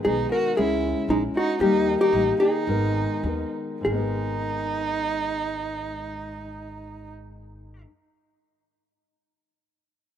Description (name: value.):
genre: mexican folk, mariachi.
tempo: 95-117 BPM.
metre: 2/4.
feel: straight.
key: G# minor.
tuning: A4 = 439 Hz.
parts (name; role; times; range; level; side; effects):
vintage hollow-body jazz guitar; melody; 0.0-7.8 s; D#4 to A#4; -23 LUFS; left 1 dB; none.
nylon-string guitar; accompaniment; 0.0-7.9 s; G#2 to A#4; -29 LUFS; left 2 dB; none.
warm violin; second line; 0.1-7.1 s; G#3 to F#4; -29 LUFS; right 5 dB; none.
upright bass; bass; 0.1-7.8 s; G#1 to D#2; -32 LUFS; equal; none.
room: light reverb.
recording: rough home demo mix.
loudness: -22 LUFS.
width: side -9 dB against mid.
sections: 0.0-3.8 A section; 3.8-6.4 B section.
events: slowing down 1.6-3.8.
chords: 0.0 G#m; 0.6 C#madd9; 1.6 D#; 2.7 G#madd9.